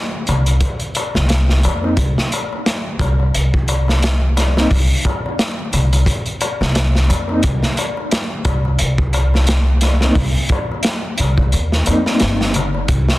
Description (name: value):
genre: trip hop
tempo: 88 BPM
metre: 4/4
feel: swing 56% on 16ths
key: C minor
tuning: A4 = 440 Hz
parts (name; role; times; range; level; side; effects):
- upright bass; bass; 0.3-13.1 s; G1 to F2; -16 LUFS; equal; none
- crunchy breakbeat drum kit; drums; 0.3-13.2 s; hi-hat, kick drum, snare drum; -18 LUFS; equal; none
- darbuka; percussion; 0.3-12.9 s; none; -25 LUFS; left 3 dB; none
- reed electric piano; accompaniment; 1.8-12.5 s; Bb3 to Eb4; -22 LUFS; equal; fast tremolo, low-pass filter, tape echo
room: small room reverb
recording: dense, heavily limited modern master, lossy compression artefacts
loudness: -14 LUFS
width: side -18 dB against mid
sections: 0.0-12.9 A section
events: none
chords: none